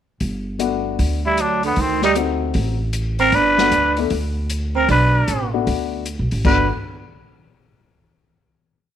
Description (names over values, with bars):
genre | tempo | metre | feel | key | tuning
jazz, small-group swing and bop | 154 BPM | 4/4 | swing 65% on 8ths | G major | A4 = 440 Hz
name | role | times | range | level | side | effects
upright bass | bass | 0.2-6.7 s | G1 to D2 | -22 LUFS | right 1 dB | none
swinging big-band drum kit | drums | 0.2-6.6 s | china cymbal, hi-hat, kick drum, snare drum | -27 LUFS | left 2 dB | none
dark baby grand piano | accompaniment | 0.6-6.7 s | A3 to A4 | -23 LUFS | left 11 dB | none
trumpet with straight mute | melody | 1.3-6.7 s | B3 to B4 | -18 LUFS | left 1 dB | none
clear alto saxophone | second line | 1.3-6.7 s | D3 to D4 | -22 LUFS | right 9 dB | none
room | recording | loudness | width
light reverb, small room ambience | 1960s-style stereo with parts hard left and right | -16 LUFS | side -10 dB against mid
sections
0.2-6.4 A section; 6.4-8.0 final chord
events
none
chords
0.2 Gmaj9; 1.8 D7b9; 3.3 Gmaj9 (rootless); 6.4 Gmaj9